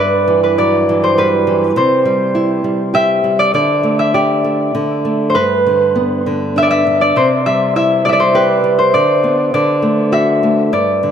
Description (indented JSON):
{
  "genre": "children's music",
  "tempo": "100 BPM",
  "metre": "3/4",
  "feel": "rubato",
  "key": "unclear",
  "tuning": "A4 = 440 Hz",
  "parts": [
    { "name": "concert harp", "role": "melody", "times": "0.0-11.1 s", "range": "B4 to E5", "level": "-13 LUFS", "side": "equal", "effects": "analog delay" },
    { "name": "nylon-string guitar", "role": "accompaniment", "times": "0.0-11.1 s", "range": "G2 to G4", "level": "-16 LUFS", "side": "right 1 dB", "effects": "none" }
  ],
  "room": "wet plate reverb, RT60 3.5 s",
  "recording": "dreamy mix soaked in reverb",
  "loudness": "-11 LUFS",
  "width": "side -8 dB against mid",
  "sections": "0.0-11.1 A section",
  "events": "none",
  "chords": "0.0 Emadd9/G; 1.8 C; 3.5 Dsus4; 4.8 D5; 5.4 G; 7.2 C; 8.9 Bm/D; 9.5 D"
}